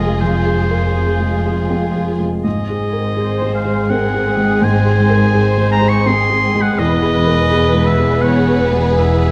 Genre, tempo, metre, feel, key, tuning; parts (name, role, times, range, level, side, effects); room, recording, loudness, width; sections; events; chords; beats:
cinematic; 82 BPM; 3/4; rubato; A4 = 438 Hz
warm studio violin section; melody; 0.0-9.3 s; Ab4 to B4; -30 LUFS; equal
clear oboe; second line; 0.0-9.3 s; C5 to Db6; -23 LUFS; equal
warm studio violin section; second line; 0.0-9.3 s; B3 to Ab4; -26 LUFS; equal
felt-muted upright piano; accompaniment; 0.0-9.3 s; E2 to Bb4; -21 LUFS; equal
warm studio viola section; accompaniment; 0.0-9.3 s; Ab4 to Db5; -27 LUFS; equal
concert harp; arpeggios; 0.0-9.3 s; E2 to F5; -27 LUFS; equal
clear studio cello section; bass; 0.0-9.3 s; E2 to Ab2; -23 LUFS; equal
warm studio double bass section; bass; 0.0-9.3 s; E1 to Ab1; -22 LUFS; equal
moderate scoring stage reverb, RT60 1.6 s; dark, warm production; -15 LUFS; mono
0.0-9.3 A section
0.0 Fm; 2.4 Ab; 6.8 E
| 0.20 0.95 1.70 | 2.45 3.18 3.91 | 4.63 5.35 6.07 | 6.79 7.50 8.23 | 8.98